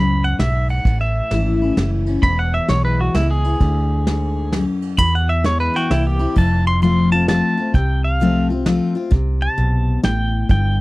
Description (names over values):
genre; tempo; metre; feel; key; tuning
honky-tonk and classic country; 131 BPM; 3/4; swing 64% on 8ths; unclear; A4 = 440 Hz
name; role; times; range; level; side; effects
pedal steel guitar; melody; 0.0-10.8 s; E4 to C6; -22 LUFS; right 1 dB; none
picked steel-string acoustic guitar; accompaniment; 0.0-10.8 s; E2 to F4; -20 LUFS; left 3 dB; none
vintage muted fingered electric bass; bass; 0.0-10.8 s; E1 to E2; -19 LUFS; right 1 dB; none
soft brush drum kit; drums; 0.4-10.6 s; crash cymbal, hi-hat, kick drum, ride cymbal, snare drum; -20 LUFS; equal; none
room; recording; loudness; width
little or no reverb; dry, close 1970s-style studio recording; -15 LUFS; side -20 dB against mid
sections
0.0-6.4 A section; 6.4-10.8 B section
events
pedal steel guitar solo 0.0-6.4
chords
0.0 E; 0.9 A; 2.2 E; 3.6 D; 5.0 E; 5.9 C7; 6.4 F; 9.1 C5